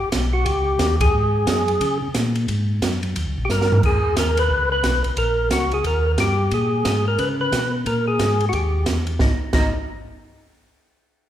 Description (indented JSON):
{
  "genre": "soul jazz organ trio",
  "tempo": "178 BPM",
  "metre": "4/4",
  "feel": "swing 62% on 8ths",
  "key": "G# minor",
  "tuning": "A4 = 440 Hz",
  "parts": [
    { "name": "percussive tonewheel organ", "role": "melody", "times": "0.0-9.7 s", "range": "D#4 to B4", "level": "-21 LUFS", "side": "equal", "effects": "slow rotary speaker, overdrive" },
    { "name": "mellow tonewheel organ", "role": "bass", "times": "0.0-9.7 s", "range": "G#1 to C#3", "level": "-22 LUFS", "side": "equal", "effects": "slow rotary speaker" },
    { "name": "open jazz drum kit", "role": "drums", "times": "0.1-9.6 s", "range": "crash cymbal, hi-hat, kick drum, ride cymbal, snare drum, toms", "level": "-23 LUFS", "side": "right 1 dB", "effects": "none" }
  ],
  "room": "moderate recital hall reverb, RT60 1.4 s",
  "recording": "recorded in a church or concert hall",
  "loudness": "-18 LUFS",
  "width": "side -11 dB against mid",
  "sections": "0.0-3.8 A section; 3.8-9.2 B section; 9.2-10.5 C section",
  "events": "band accent 1.0; drum fill 3.5-3.8",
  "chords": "0.0 D#7; 1.1 F#sus2; 1.8 A#m; 2.5 F#sus2; 3.2 D#7; 3.8 Emaj7#11; 4.5 Bsus2; 5.2 A#m7; 5.8 D#; 6.5 G#sus2; 7.2 Bsus2; 7.9 G#sus2; 8.5 D#; 9.2 G#5"
}